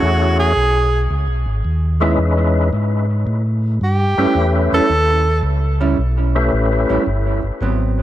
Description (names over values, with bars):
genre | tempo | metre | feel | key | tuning
jazz | 111 BPM | 4/4 | swing 67% on 8ths | unclear | A4 = 442 Hz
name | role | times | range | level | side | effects
breathy tenor saxophone | melody | 0.0-5.4 s | F#4 to A4 | -19 LUFS | right 1 dB | tape echo
percussive tonewheel organ | melody | 0.0-7.0 s | G#3 to B4 | -21 LUFS | left 3 dB | slow rotary speaker, overdrive, chorus vibrato, tape echo
mellow tonewheel organ | bass | 0.0-8.0 s | G1 to A2 | -17 LUFS | equal | chorus vibrato, slow rotary speaker
vintage hollow-body jazz guitar | accompaniment | 2.0-8.0 s | F#3 to E4 | -23 LUFS | right 4 dB | tape echo
room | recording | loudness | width
moderate spring reverb, RT60 1.3 s, digital ambience | echo-heavy mix, cassette tape | -14 LUFS | side -13 dB against mid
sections
0.0-8.0 A section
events
tenor saxophone solo 0.0-8.0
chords
0.0 F#m7; 1.1 C#m7; 3.3 A7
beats
0.02 0.56 | 1.10 1.64 2.19 2.73 | 3.27 3.81 4.35 4.89 | 5.44 5.98 6.52 7.06 | 7.61